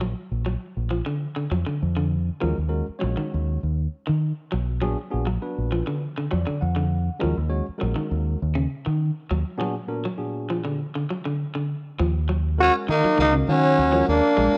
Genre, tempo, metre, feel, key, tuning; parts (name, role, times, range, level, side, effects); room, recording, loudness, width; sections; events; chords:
afrobeat; 100 BPM; 4/4; straight; Eb minor; A4 = 435 Hz
electric guitar at the edge of break-up; arpeggios; 0.0-14.6 s; Db3 to Ab3; -31 LUFS; equal
deep dub fingered electric bass; bass; 0.0-14.6 s; Bb1 to Eb3; -26 LUFS; equal
bright tine electric piano; accompaniment; 2.4-14.6 s; Bb2 to Gb5; -33 LUFS; equal
bright trombone; melody; 12.6-14.6 s; Db4 to Gb4; -22 LUFS; equal
breathy tenor saxophone; second line; 12.6-14.6 s; Gb3 to Db4; -26 LUFS; equal
moderate echo chamber reverb, RT60 1.6 s, small room ambience; -24 LUFS; mono
0.0-12.0 A section; 12.0-14.6 B section
tine electric piano fill 6.0-7.2; break 9.6-12.0
0.0 Bb; 2.4 Ebm7; 4.8 Bb7b9b13; 7.2 Ebm7; 9.6 Bb7b9b13; 12.0 Ebm9